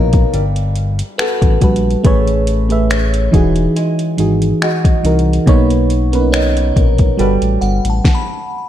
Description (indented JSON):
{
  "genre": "contemporary R&B",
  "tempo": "70 BPM",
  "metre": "4/4",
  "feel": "swing 54% on 16ths",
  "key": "unclear",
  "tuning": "A4 = 439 Hz",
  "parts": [
    { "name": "mellow FM electric piano", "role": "accompaniment", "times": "0.0-8.1 s", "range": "B2 to E5", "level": "-15 LUFS", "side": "right 2 dB", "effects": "chorus" },
    { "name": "fingerpicked old ladder-braced acoustic guitar", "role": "arpeggios", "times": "0.0-8.6 s", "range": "E3 to A#4", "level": "-22 LUFS", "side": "left 1 dB", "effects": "ping-pong delay" },
    { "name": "smooth synth bass", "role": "bass", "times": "0.0-8.0 s", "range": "E1 to C2", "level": "-16 LUFS", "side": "left 1 dB", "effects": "none" },
    { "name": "downlifter", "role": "sound effects", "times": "0.0-2.0 s", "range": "none", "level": "-43 LUFS", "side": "left 1 dB", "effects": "none" },
    { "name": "glassy synth bell", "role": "texture", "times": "0.0-8.7 s", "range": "B4 to B5", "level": "-26 LUFS", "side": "left 1 dB", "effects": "chorus, ping-pong delay" },
    { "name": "smooth R&B drum kit", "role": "drums", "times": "0.1-8.3 s", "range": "finger snaps, hi-hat, kick drum, snare drum", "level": "-15 LUFS", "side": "left 1 dB", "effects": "vintage 12-bit sampler grit" }
  ],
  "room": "little or no reverb",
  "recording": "none",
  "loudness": "-11 LUFS",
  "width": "side -11 dB against mid",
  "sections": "0.0-8.7 A section",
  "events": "none",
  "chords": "0.3 Gmaj9; 2.0 Amaj9; 3.3 Emaj9; 5.5 Bmaj9; 7.2 Gmaj9",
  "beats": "0.33 1.19 | 2.05 2.90 3.76 4.62 | 5.47 6.33 7.19 8.05"
}